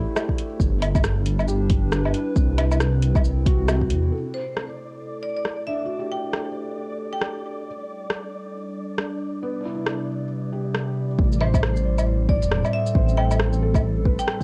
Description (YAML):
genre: future garage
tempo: 136 BPM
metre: 4/4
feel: swing 60% on 16ths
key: A minor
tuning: A4 = 439 Hz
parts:
  - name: felt-muted upright piano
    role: accompaniment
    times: 0.0-14.4 s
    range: B3 to D5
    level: -35 LUFS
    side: equal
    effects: sidechain pumping, analog delay
  - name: warbly tape-like pad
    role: sustained chords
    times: 0.0-14.4 s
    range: A2 to D5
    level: -32 LUFS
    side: equal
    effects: chorus, built-in reverb, sidechain pumping
  - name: dark detuned saw bass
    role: bass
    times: 0.0-4.1, 11.2-14.2 s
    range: E1 to E2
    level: -24 LUFS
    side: equal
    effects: tube saturation, sidechain pumping
  - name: deep house drum kit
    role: drums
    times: 0.2-14.4 s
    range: hi-hat, rim click, shaker, woodblock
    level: -29 LUFS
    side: equal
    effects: vintage 12-bit sampler grit
  - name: electronic kick drum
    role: drums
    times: 0.3-3.9, 11.2-14.4 s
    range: none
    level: -24 LUFS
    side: equal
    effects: vintage 12-bit sampler grit
  - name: flickering grainy texture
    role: texture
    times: 4.7-11.2 s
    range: D5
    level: -42 LUFS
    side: equal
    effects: built-in reverb
  - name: marimba with hard mallets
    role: melody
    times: 4.3-7.7, 11.4-14.4 s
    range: C5 to G5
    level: -33 LUFS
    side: equal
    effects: analog delay
room: light reverb, digital ambience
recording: cassette tape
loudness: -23 LUFS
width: mono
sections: 0.0-4.1 A section; 4.1-11.2 B section; 11.2-14.4 A section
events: filter sweep on ambient pad 4.1-11.2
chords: 0.0 Am7; 0.6 G6; 2.4 Cmaj7; 4.1 Am7; 7.7 G5; 9.4 Cmaj7; 11.2 Am7